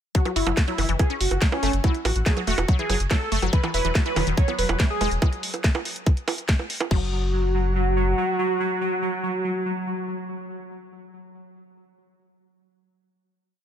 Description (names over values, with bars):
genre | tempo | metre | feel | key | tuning
psychedelic trance | 142 BPM | 4/4 | straight | F# minor | A4 = 440 Hz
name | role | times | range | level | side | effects
wide unison lead | melody | 0.1-11.1 s | C#4 to C#5 | -27 LUFS | equal | phaser, sidechain pumping, dub echo
wide unison pluck | riff | 0.1-7.1 s | D#3 to F#4 | -29 LUFS | moving between left 6 dB and right 1 dB | auto-pan, cassette tape, sidechain pumping, digital delay
electronic kick drum | drums | 0.1-7.0 s | none | -20 LUFS | equal | none
garage drum kit | drums | 0.1-7.0 s | bongos, crash cymbal, hi-hat, snare drum | -28 LUFS | right 2 dB | none
round analog bass | bass | 0.4-8.1 s | E1 to A1 | -24 LUFS | equal | tube saturation
pulsing gated texture | sustained chords | 3.5-11.1 s | F#3 | -29 LUFS | right 1 dB | chorus, built-in reverb, sidechain pumping
room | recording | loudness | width
digital ambience | none | -21 LUFS | side -9 dB against mid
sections
0.1-6.9 drop; 6.9-10.3 final note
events
drop 0.1-6.9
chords
0.1 F#5; 3.5 E5; 6.9 N.C.